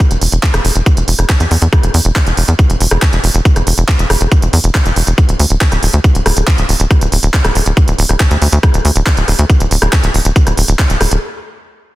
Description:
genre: psychedelic trance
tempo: 139 BPM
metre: 4/4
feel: straight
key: unclear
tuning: A4 = 445 Hz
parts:
  - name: electronic kick drum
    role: drums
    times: 0.0-10.9 s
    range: none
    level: -13 LUFS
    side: equal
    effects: none
  - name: garage drum kit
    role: drums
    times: 0.0-11.2 s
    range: handclaps, hi-hat, rim click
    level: -16 LUFS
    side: right 1 dB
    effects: none
  - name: tight sequencer bass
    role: bass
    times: 0.1-11.2 s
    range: D1 to E2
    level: -12 LUFS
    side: equal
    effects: none
room: little or no reverb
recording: dense, heavily limited modern master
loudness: -9 LUFS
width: side -17 dB against mid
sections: 0.0-12.0 A section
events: stop 11.2-12.0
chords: none

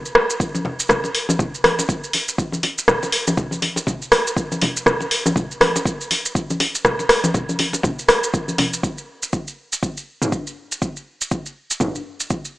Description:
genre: house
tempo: 121 BPM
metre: 4/4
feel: swing 58% on 16ths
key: none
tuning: none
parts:
  - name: deep house drum kit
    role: drums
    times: 0.1-12.5 s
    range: hi-hat, rim click, shaker, toms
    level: -18 LUFS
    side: equal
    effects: overdrive
  - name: congas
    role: percussion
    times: 0.2-8.7 s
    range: none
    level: -24 LUFS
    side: left 1 dB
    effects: none
  - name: electronic kick drum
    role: drums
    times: 0.4-12.4 s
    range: none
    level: -23 LUFS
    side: equal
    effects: overdrive
room: moderate plate reverb, RT60 2.5 s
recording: small speaker sound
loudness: -18 LUFS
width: side -18 dB against mid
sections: 0.0-8.8 A section; 8.8-12.6 B section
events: none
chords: none

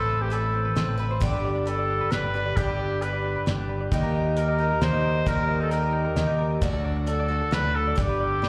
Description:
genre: indie folk with a building arrangement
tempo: 133 BPM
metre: 3/4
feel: straight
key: G major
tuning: A4 = 440 Hz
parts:
  - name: warm trumpet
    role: melody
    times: 0.0-8.5 s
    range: G4 to C5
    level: -31 LUFS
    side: equal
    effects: plate reverb, slapback echo, tape echo
  - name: picked twelve-string acoustic guitar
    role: accompaniment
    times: 0.0-8.5 s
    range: G2 to B4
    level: -33 LUFS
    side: equal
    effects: plate reverb, slapback echo
  - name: tenor ukulele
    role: arpeggios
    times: 0.0-8.5 s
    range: C4 to Eb5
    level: -34 LUFS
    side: equal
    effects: plate reverb, slapback echo
  - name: picked electric bass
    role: bass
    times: 0.0-8.5 s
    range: G1 to Eb2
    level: -29 LUFS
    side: equal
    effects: none
  - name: cloth-damped thuddy drum kit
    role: drums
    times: 0.3-8.5 s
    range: hi-hat, kick drum, snare drum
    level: -29 LUFS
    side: equal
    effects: none
room: light reverb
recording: live gig heard through the venue's PA, club reverb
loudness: -25 LUFS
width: mono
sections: 0.0-8.5 A section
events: none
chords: 0.0 Amadd9; 1.2 G; 3.9 Eb; 6.6 D; 8.0 G

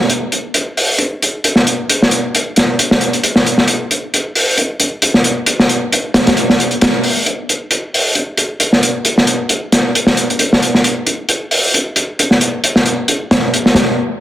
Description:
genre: breakbeat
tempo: 134 BPM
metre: 4/4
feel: swing 55% on 16ths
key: none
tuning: none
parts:
  - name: crunchy breakbeat drum kit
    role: drums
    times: 0.0-13.9 s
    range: hi-hat, snare drum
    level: -11 LUFS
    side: equal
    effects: none
room: moderate plate reverb, RT60 1.5 s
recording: dense, heavily limited modern master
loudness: -11 LUFS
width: side -13 dB against mid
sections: 0.1-14.2 A section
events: stop 14.0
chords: none

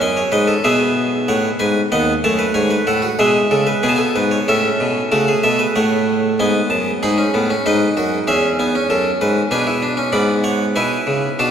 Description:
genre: classical, baroque-style 4-part fugue for harpsichord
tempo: 95 BPM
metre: 4/4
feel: straight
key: A major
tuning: A4 = 440 Hz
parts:
  - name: harpsichord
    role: solo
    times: 0.0-11.5 s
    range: D#2 to B5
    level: -14 LUFS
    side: equal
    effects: none
room: wet cathedral reverb, RT60 4.0 s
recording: recorded in a church or concert hall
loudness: -14 LUFS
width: side -8 dB against mid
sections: 0.0-4.5 A section; 4.5-11.5 B section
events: none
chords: 0.0 E (rootless); 0.6 E/B; 1.9 D#dim; 3.2 E/B; 4.5 A; 5.8 D#dim; 8.3 C#m/E; 9.5 G#dim

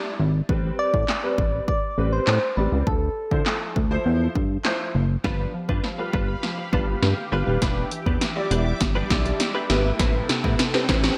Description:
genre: dance-pop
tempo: 101 BPM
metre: 4/4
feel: straight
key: A minor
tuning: A4 = 439 Hz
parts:
  - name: soft struck synth lead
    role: melody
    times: 0.0-4.7 s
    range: A4 to E5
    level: -29 LUFS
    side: equal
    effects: chorus, digital delay
  - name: warm baby grand piano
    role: accompaniment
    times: 0.0-11.2 s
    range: F3 to D5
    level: -32 LUFS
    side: equal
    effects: ensemble chorus, sidechain pumping
  - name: chorused synth bass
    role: bass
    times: 0.2-11.1 s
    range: D#1 to D3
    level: -26 LUFS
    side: equal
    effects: sidechain pumping
  - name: punchy analog drum machine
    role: drums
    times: 0.5-11.2 s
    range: handclaps, hi-hat, kick drum, snare drum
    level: -27 LUFS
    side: equal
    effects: gated reverb
  - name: filtered supersaw swell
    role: sustained chords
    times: 5.2-11.2 s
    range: G4 to D6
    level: -36 LUFS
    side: equal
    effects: lush chorus, sidechain pumping
  - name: glassy wavetable pluck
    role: arpeggios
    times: 5.2-11.2 s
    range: C3 to D6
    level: -38 LUFS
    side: equal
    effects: chorus, sidechain pumping, digital delay
  - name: direct-recorded clean electric guitar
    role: riff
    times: 5.2-11.1 s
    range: G3 to B4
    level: -33 LUFS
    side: equal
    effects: ensemble chorus
  - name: riser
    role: sound effects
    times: 7.0-11.2 s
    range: none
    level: -37 LUFS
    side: equal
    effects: none
room: light reverb, digital ambience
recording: bright 1980s-style digital production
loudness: -23 LUFS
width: mono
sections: 0.0-5.2 A section; 5.2-11.2 B section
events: build-up 5.2-11.2; drum fill 5.2-11.2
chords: 0.5 Am9; 2.9 Dm9; 5.2 G7; 7.6 Em7; 10.0 Am9

